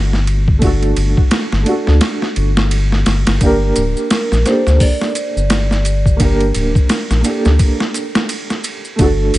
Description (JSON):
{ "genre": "trip hop", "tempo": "86 BPM", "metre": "4/4", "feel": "swing 59% on 16ths", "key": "G harmonic minor", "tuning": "A4 = 439 Hz", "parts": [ { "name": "felt-muted upright piano", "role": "accompaniment", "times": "0.0-9.4 s", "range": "A3 to Bb4", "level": "-19 LUFS", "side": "right 2 dB", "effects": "tremolo, tape echo" }, { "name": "round analog bass", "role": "bass", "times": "0.0-9.4 s", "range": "D1 to D2", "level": "-14 LUFS", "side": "equal", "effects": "none" }, { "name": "boom bap sampler-style drum kit", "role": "drums", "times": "0.1-9.4 s", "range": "hi-hat, kick drum, ride cymbal, snare drum", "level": "-16 LUFS", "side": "equal", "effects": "overdrive" }, { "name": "maracas", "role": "percussion", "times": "3.4-9.4 s", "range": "none", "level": "-29 LUFS", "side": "equal", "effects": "none" }, { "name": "vibraphone with soft mallets", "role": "melody", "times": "4.1-6.9 s", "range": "Bb4 to D5", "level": "-23 LUFS", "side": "equal", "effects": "tape echo" } ], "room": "little or no reverb", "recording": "nothing above 10.7 kHz", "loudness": "-12 LUFS", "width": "side -16 dB against mid", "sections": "0.0-9.4 A section", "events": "kick drops out 2.0-3.4", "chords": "0.0 D/G; 3.4 Gmadd9" }